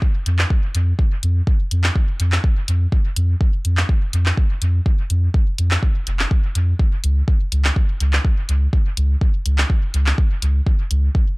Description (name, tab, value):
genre	dub techno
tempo	124 BPM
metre	4/4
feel	straight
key	unclear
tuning	A4 = 440 Hz
part	electronic kick drum	drums	0.0-11.2 s	none	-17 LUFS	equal	none
part	soft dub sub bass	bass	0.3-11.1 s	F1 to F2	-16 LUFS	equal	tube saturation, sidechain pumping
part	deep house drum kit	drums	0.3-11.0 s	handclaps, hi-hat	-24 LUFS	equal	dub echo
room	little or no reverb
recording	dry, gritty hardware recording, transformer saturation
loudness	-16 LUFS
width	side -25 dB against mid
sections	0.0-11.4 A section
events	none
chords	none